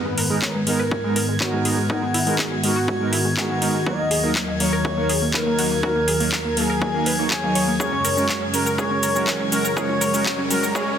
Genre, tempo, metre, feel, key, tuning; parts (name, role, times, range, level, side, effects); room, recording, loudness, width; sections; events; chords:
progressive house; 122 BPM; 4/4; straight; A4 = 440 Hz
expressive synth lead; melody; 0.0-11.0 s; F#4 to D#5; -24 LUFS; left 1 dB; lush chorus, cassette tape, sidechain pumping, tape echo
warm analog pad; sustained chords; 0.0-11.0 s; D#2 to B3; -26 LUFS; equal; chorus, sidechain pumping
soft supersaw; stabs; 0.0-10.9 s; F#3 to C#5; -26 LUFS; right 3 dB; sidechain pumping, tape echo
drifting glass-harmonics texture; texture; 0.2-11.0 s; G#6; -33 LUFS; left 1 dB; chorus, built-in reverb, sidechain pumping
wide unison pluck; arpeggios; 0.1-10.9 s; G#3 to C#5; -28 LUFS; equal; sidechain pumping, tape echo
house drum kit; drums; 0.2-10.9 s; cabasa, handclaps, hi-hat; -25 LUFS; equal; overdrive, sidechain pumping on hats, sidechain pumping on perc
electronic kick drum; drums; 0.4-10.9 s; -29 LUFS; equal; overdrive, high-pass filter on kick, high-pass filter on room
riser; sound effects; 8.9-11.0 s; -34 LUFS; right 1 dB
moderate huge ambient reverb, RT60 6.5 s; dense, heavily limited modern master, high-pass filter; -18 LUFS; side -8 dB against mid
0.0-11.0 A section
build-up 0.0-11.0; riser 8.9-11.0
0.0 G#madd9; 3.9 D#m; 7.8 F#add9